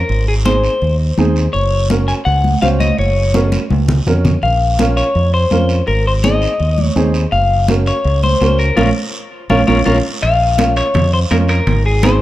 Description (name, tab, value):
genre	latin, cumbia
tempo	166 BPM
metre	4/4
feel	straight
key	Bb minor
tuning	A4 = 440 Hz
part	electric guitar at the edge of break-up	melody	0.0-12.2 s	F4 to Ab5	-17 LUFS	left 2 dB	spring reverb
part	fingered electric bass	bass	0.0-12.2 s	Gb1 to F2	-15 LUFS	equal	none
part	congas	percussion	0.1-12.2 s	none	-19 LUFS	equal	none
part	guiro	percussion	0.1-12.2 s	none	-30 LUFS	right 3 dB	none
part	dark upright piano	accompaniment	0.5-12.2 s	C4 to C5	-18 LUFS	right 2 dB	none
part	timbales	percussion	10.2-12.2 s	none	-27 LUFS	right 4 dB	none
room	light reverb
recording	dark, warm production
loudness	-12 LUFS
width	side -15 dB against mid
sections	0.0-10.2 A section; 10.2-12.2 A section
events	drum fill 3.5-4.4; band accent 8.8-10.2; upright piano fill 9.1-10.2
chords	0.1 Ab; 1.5 Gb; 4.4 Bbm; 5.9 Ab; 7.3 Gb; 8.8 Bbm; 11.7 Ab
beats	| 0.09 0.45 0.81 1.18 | 1.54 1.90 2.26 2.62 | 2.98 3.35 3.71 4.07 | 4.43 4.79 5.16 5.52 | 5.88 6.24 6.60 6.96 | 7.33 7.69 8.05 8.41 | 8.77 9.14 9.50 9.86 | 10.22 10.58 10.95 11.31 | 11.67 12.03